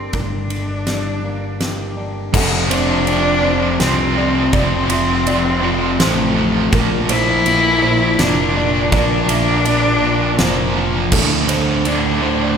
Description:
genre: post-rock.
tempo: 82 BPM.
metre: 3/4.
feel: straight.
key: unclear.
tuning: A4 = 441 Hz.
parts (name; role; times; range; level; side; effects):
clear cello; melody; 0.0-12.6 s; A3 to E4; -19 LUFS; left 1 dB; none.
electric guitar through a small old amp; arpeggios; 0.0-2.3 s; G2 to G4; -30 LUFS; left 1 dB; none.
felt-muted upright piano; arpeggios; 0.0-12.6 s; A4 to E5; -27 LUFS; right 3 dB; none.
fingered electric bass; bass; 0.0-12.5 s; F1 to D2; -23 LUFS; equal; none.
huge arena drum kit; drums; 0.1-12.0 s; crash cymbal, kick drum, ride cymbal, snare drum; -21 LUFS; equal; none.
cranked stack guitar; riff; 2.3-12.6 s; D2 to Bb3; -20 LUFS; right 6 dB; overdrive, harmonic tremolo.
sludgy distorted guitar; riff; 2.3-12.6 s; D2 to Bb3; -20 LUFS; left 5 dB; overdrive.
room: wet concert hall reverb, RT60 2.4 s.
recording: recorded in a church or concert hall.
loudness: -14 LUFS.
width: side -7 dB against mid.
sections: 0.0-2.3 A section; 2.3-12.6 B section.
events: none.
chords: 0.0 Gm; 2.3 F; 6.7 Bb; 11.1 D5.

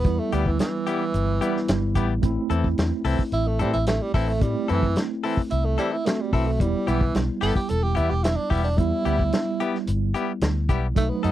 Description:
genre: straight-eighth soul blues.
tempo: 110 BPM.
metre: 4/4.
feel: straight.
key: E minor.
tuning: A4 = 440 Hz.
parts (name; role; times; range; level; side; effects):
breathy tenor saxophone; second line; 0.0-11.3 s; E3 to A4; -27 LUFS; right 3 dB; none.
tine electric piano; accompaniment; 0.0-11.3 s; F#3 to F#4; -28 LUFS; right 3 dB; medium stereo tremolo.
vintage muted fingered electric bass; bass; 0.0-11.3 s; E1 to A2; -24 LUFS; equal; none.
warm soul drum kit; drums; 0.0-11.3 s; hi-hat, kick drum, snare drum; -24 LUFS; equal; none.
direct-recorded clean electric guitar; stabs; 0.3-11.3 s; E3 to A4; -27 LUFS; left 7 dB; tremolo.
room: little or no reverb.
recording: dry, close 1970s-style studio recording.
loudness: -21 LUFS.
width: side -13 dB against mid.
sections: 0.0-11.3 A section.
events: tenor saxophone solo 0.0-11.3.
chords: 0.0 Em; 2.2 Am; 6.6 Em.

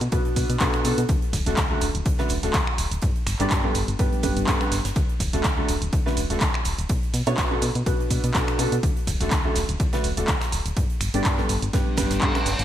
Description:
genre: piano house.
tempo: 124 BPM.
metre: 4/4.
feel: swing 55% on 16ths.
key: D major.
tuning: A4 = 436 Hz.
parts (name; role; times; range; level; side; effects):
solid FM bass; bass; 0.0-12.6 s; D1 to B2; -27 LUFS; equal; sidechain pumping.
punchy analog drum machine; drums; 0.0-12.6 s; finger snaps, handclaps, hi-hat, ride cymbal, shaker; -28 LUFS; right 1 dB; gated reverb.
clear upright piano; riff; 0.1-12.5 s; G2 to D5; -26 LUFS; right 1 dB; wide subtle chorus, sidechain pumping, ping-pong delay.
electronic kick drum; drums; 0.1-12.3 s; none; -25 LUFS; equal; none.
huge arena drum kit; drums; 0.1-12.6 s; hi-hat, snare drum; -38 LUFS; right 3 dB; high-pass filter on hats, high-pass filter on snare, high-pass filter on room, gated reverb.
reverse cymbal; sound effects; 11.9-12.6 s; none; -29 LUFS; equal; none.
room: light reverb, studio reverb.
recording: bright 1980s-style digital production.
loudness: -21 LUFS.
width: side -11 dB against mid.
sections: 0.0-12.6 A section.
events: reverse cymbal 11.9-12.6.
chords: 0.0 Bm7; 1.1 D; 3.0 G; 5.0 D; 6.9 Bm7; 8.8 D; 10.8 G.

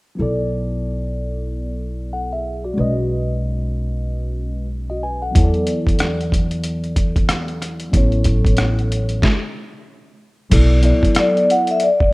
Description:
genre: hip hop, jazz-hop.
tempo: 93 BPM.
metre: 4/4.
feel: swing 60% on 16ths.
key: B dorian.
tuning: A4 = 439 Hz.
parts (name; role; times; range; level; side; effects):
mellow tine electric piano; accompaniment; 0.2-12.1 s; F#3 to G#5; -23 LUFS; left 1 dB; phaser.
upright bass; bass; 0.2-10.9 s; A1 to E2; -20 LUFS; equal; none.
trip hop sampler-style drum kit; drums; 5.4-12.1 s; crash cymbal, hi-hat, kick drum, rim click, snare drum; -18 LUFS; equal; none.
vibraphone with soft mallets; melody; 11.2-12.1 s; D5 to F#5; -14 LUFS; left 1 dB; none.
room: light reverb.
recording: rough home demo mix.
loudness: -16 LUFS.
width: side -22 dB against mid.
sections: 0.2-10.5 A section; 10.5-12.1 B section.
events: stop 9.2-10.5.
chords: 0.2 Bm7; 2.8 B; 5.4 E5; 7.9 A; 10.5 Bm7.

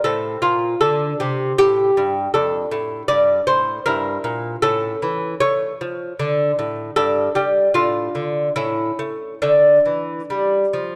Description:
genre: classical, baroque-style dance for lute.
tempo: 68-80 BPM.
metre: 3/4.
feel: rubato.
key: D minor.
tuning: A4 = 441 Hz.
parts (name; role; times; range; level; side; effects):
lute; solo; 0.0-11.0 s; F2 to D5; -19 LUFS; equal; none.
room: light reverb.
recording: dark, warm production.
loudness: -19 LUFS.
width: mono.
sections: 0.0-11.0 A section.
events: none.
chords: 0.0 Gm11; 2.3 Dm/F; 3.9 Edim/G; 4.6 A; 6.2 D5; 7.0 G5; 7.8 Dm/A; 8.6 A; 9.4 Dm.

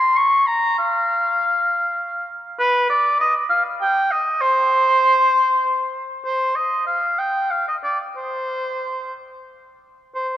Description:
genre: classical, baroque-style fantasia for unaccompanied oboe.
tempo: 58-67 BPM (dotted quarters).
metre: 6/8.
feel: rubato.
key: C minor.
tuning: A4 = 439 Hz.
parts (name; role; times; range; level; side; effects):
warm oboe; solo; 0.0-10.4 s; B4 to Db6; -17 LUFS; equal; none.
room: wet church reverb, RT60 3.3 s.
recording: worn, warbling old tape, cassette tape, warbly pitch drift.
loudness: -17 LUFS.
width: side -12 dB against mid.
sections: 0.0-10.2 A section.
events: none.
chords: none.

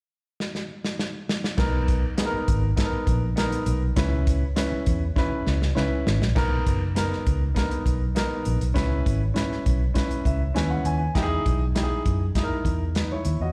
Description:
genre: uptempo 1960s-style soul.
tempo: 100 BPM.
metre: 4/4.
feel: straight.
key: B major.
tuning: A4 = 440 Hz.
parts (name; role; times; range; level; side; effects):
warm soul drum kit; drums; 0.4-13.4 s; crash cymbal, hi-hat, kick drum, snare drum; -28 LUFS; equal; none.
warm upright piano; accompaniment; 1.6-13.5 s; B3 to G#5; -30 LUFS; equal; slapback echo.
vintage muted fingered electric bass; bass; 1.6-13.5 s; F#1 to F#2; -27 LUFS; equal; none.
room: light reverb.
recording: live gig heard through the venue's PA, recital hall reverb.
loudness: -24 LUFS.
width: mono.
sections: 0.0-1.6 A section; 1.6-6.4 B section; 6.4-13.5 C section.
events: drum fill 0.4-1.6, 5.2-6.4; upright piano fill 10.0-11.2.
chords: 0.0 N.C.; 1.6 Bmaj7; 4.0 C#m7; 6.4 Bmaj7; 8.8 C#m7; 11.2 Emaj7.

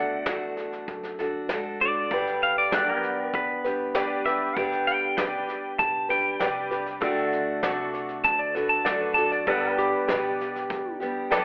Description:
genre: honky-tonk and classic country.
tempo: 98 BPM.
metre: 4/4.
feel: straight.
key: G major.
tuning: A4 = 439 Hz.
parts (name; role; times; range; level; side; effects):
clean electric guitar; melody; 0.0-11.4 s; G4 to A5; -28 LUFS; equal; spring reverb.
picked steel-string acoustic guitar; accompaniment; 0.0-11.4 s; G2 to B4; -32 LUFS; equal; none.
pedal steel guitar; sustained chords; 0.0-11.4 s; B3 to G5; -34 LUFS; equal; none.
upright bass; bass; 0.0-11.4 s; G1 to B2; -49 LUFS; equal; none.
soft brush drum kit; drums; 0.3-11.4 s; hi-hat, kick drum, snare drum; -35 LUFS; equal; none.
tack piano; accompaniment; 2.7-11.4 s; B3 to D5; -32 LUFS; equal; none.
room: wet studio reverb, RT60 0.7 s.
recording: telephone sound.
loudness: -26 LUFS.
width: mono.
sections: 0.0-11.4 A section.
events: clean electric guitar solo 0.0-11.4.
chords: 0.0 D; 2.1 G; 7.0 D; 9.5 G.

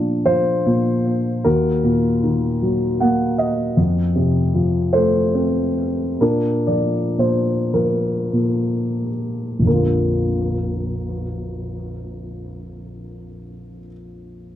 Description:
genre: classical, lyrical solo piano.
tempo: 28-52 BPM (dotted quarters).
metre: 6/8.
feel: rubato.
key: Bb major.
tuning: A4 = 441 Hz.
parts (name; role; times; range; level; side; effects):
dark grand piano; solo; 0.0-14.6 s; Bb1 to Gb5; -18 LUFS; equal; tape echo.
room: moderate studio reverb, RT60 0.6 s.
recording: none.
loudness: -17 LUFS.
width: side -11 dB against mid.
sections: 0.0-9.7 A section; 9.7-13.9 B section.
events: grand piano fill 2.6-3.8; slowing down 3.8-9.7.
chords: 0.0 Bb; 1.5 Ebm; 3.8 F; 6.2 Bb.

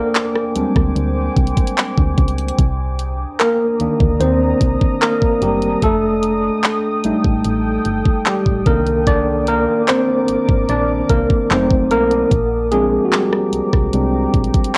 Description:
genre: contemporary R&B.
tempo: 74 BPM.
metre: 4/4.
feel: straight.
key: C minor.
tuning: A4 = 437 Hz.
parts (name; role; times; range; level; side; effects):
tine electric piano; accompaniment; 0.0-14.8 s; Eb3 to D5; -19 LUFS; equal; overdrive, cassette tape.
deep dark ambient pad; sustained chords; 0.0-14.8 s; D4 to Eb6; -28 LUFS; equal; chorus, built-in reverb, sidechain pumping, cassette tape.
trap drum kit; drums; 0.1-14.8 s; handclaps, hi-hat, kick drum, rim click; -19 LUFS; equal; cassette tape.
solid FM bass; bass; 0.6-14.5 s; F1 to Eb2; -24 LUFS; equal; none.
room: light reverb.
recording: home recording on cassette.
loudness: -17 LUFS.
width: mono.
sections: 0.0-14.8 A section.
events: tine electric piano solo 0.0-14.8.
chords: 0.0 Bb13; 2.6 Cm9; 5.8 F9; 8.7 Cm9; 11.5 F7b9; 12.3 Bb13.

